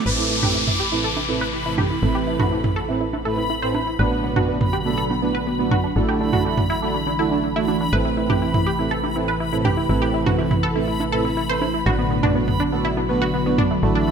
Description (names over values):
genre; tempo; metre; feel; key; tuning
progressive house; 122 BPM; 4/4; straight; A dorian; A4 = 440 Hz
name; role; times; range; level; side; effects
warm analog pad; sustained chords; 0.0-14.1 s; B2 to B4; -27 LUFS; equal; chorus
wide unison pluck; arpeggios; 0.0-14.1 s; A3 to C5; -25 LUFS; right 1 dB; phaser, dub echo
backwards swelling texture; texture; 0.0-14.1 s; B5; -29 LUFS; left 2 dB; built-in reverb
soft supersaw; stabs; 0.1-14.1 s; A2 to B4; -24 LUFS; right 4 dB; low-pass filter, dub echo
tight sequencer bass; bass; 0.1-14.1 s; A1; -28 LUFS; equal; none
downlifter; sound effects; 0.1-4.0 s; none; -24 LUFS; left 1 dB; none
electronic toms and congas; percussion; 0.4-13.7 s; none; -23 LUFS; right 2 dB; none
room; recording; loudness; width
light reverb; none; -18 LUFS; side -7 dB against mid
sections
0.1-14.1 A section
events
filter sweep on synth pluck 0.1-14.1; filter sweep on supersaw synth 0.1-14.1; filter sweep on analog synth pad 0.1-14.1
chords
0.1 Amadd9; 4.0 Bm/A; 6.0 Dadd9/A; 7.9 Amadd9; 11.9 Bm/A